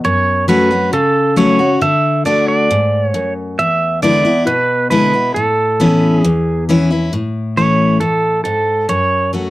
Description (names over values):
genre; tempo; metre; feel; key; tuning
country; 136 BPM; 4/4; straight; A major; A4 = 440 Hz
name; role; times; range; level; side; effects
pedal steel guitar; melody; 0.0-9.3 s; A4 to E5; -14 LUFS; right 2 dB; none
picked steel-string acoustic guitar; accompaniment; 0.0-9.5 s; E2 to F#4; -15 LUFS; left 2 dB; none
room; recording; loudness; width
light reverb; dry, close 1970s-style studio recording; -12 LUFS; side -17 dB against mid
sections
0.0-7.1 A section; 7.1-9.5 B section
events
none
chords
0.1 F#m; 1.8 D; 3.6 E7; 5.4 Aadd9; 7.1 A; 8.9 F#m